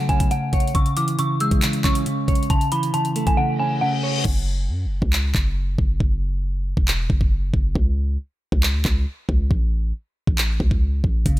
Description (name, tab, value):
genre	hip hop, trap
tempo	137 BPM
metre	4/4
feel	half-time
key	unclear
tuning	A4 = 439 Hz
part	dark detuned synth bell	melody	0.0-4.2 s	F#5 to E6	-24 LUFS	left 1 dB	chorus, low-pass filter, tape echo
part	clean electric guitar	accompaniment	0.0-4.3, 11.3-11.4 s	C#3 to C#5	-22 LUFS	right 1 dB	wide subtle chorus, low-pass filter
part	trap drum kit	drums	0.1-11.4 s	crash cymbal, handclaps, hi-hat, kick drum	-20 LUFS	equal	none
part	reverse cymbal	sound effects	3.6-4.3 s	none	-29 LUFS	left 7 dB	none
part	warm 808-style bass	bass	4.3-11.4 s	E1 to F#2	-21 LUFS	equal	none
room	little or no reverb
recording	none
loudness	-19 LUFS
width	side -15 dB against mid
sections	0.0-4.3 A section; 4.3-11.4 B section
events	reverse cymbal 3.6-4.3; hi-hats muted 4.3-11.3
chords	0.0 F#m; 0.7 C#m; 2.5 A; 4.3 F#5; 7.8 N.C.; 9.5 A